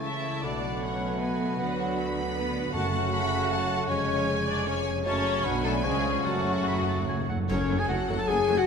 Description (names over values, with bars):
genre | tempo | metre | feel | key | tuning
classical, dramatic, fast romantic movement for symphony orchestra | 154 BPM | 3/4 | rubato | F# minor | A4 = 440 Hz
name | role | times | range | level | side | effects
rich symphonic violin section | melody | 0.0-8.7 s | C#5 to B5 | -37 LUFS | left 1 dB | none
bright oboe | second line | 0.0-8.7 s | C#5 to B5 | -37 LUFS | right 4 dB | none
hollow concert flute | second line | 0.0-8.7 s | C#5 to C#6 | -35 LUFS | left 2 dB | none
rich studio violin section | second line | 0.0-8.7 s | F#4 to F#5 | -34 LUFS | left 3 dB | none
warm clarinet | second line | 0.0-8.7 s | C#4 to A4 | -38 LUFS | left 2 dB | none
mellow bassoon | accompaniment | 0.0-7.3 s | E#3 to B3 | -37 LUFS | right 4 dB | none
rich symphonic viola section | accompaniment | 0.0-8.6 s | F#3 to F#4 | -35 LUFS | right 2 dB | none
bright trombone section | sustained chords | 0.0-7.3 s | B2 to B3 | -36 LUFS | right 4 dB | none
warm French horn section | sustained chords | 0.0-8.7 s | B3 to A4 | -34 LUFS | left 5 dB | none
concert harp | arpeggios | 0.0-8.7 s | E#2 to G#5 | -35 LUFS | left 8 dB | none
clear studio cello section | bass | 0.0-8.6 s | E#2 to D3 | -36 LUFS | right 3 dB | none
rich symphonic double bass section | bass | 0.0-8.6 s | E#1 to D2 | -36 LUFS | right 5 dB | none
timpani | percussion | 2.7-3.3, 6.3-7.4 s | F#2 | -35 LUFS | equal | none
cymbal swell, clash cymbals and concert bass drum | percussion | 5.1-8.2 s | none | -39 LUFS | right 1 dB | none
dark tuba | bass | 7.5-8.6 s | F#1 | -36 LUFS | right 5 dB | none
room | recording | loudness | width
wet scoring stage reverb, RT60 1.8 s | none | -25 LUFS | side -6 dB against mid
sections
0.0-7.5 A section; 7.5-8.7 B section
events
timpani fill 6.3-7.5; band accent 7.5-7.9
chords
0.4 Bm7; 1.6 Bm/D; 2.7 F#m; 3.9 C#/E#; 5.1 F#m; 5.4 Bm; 5.8 C#; 6.3 F#m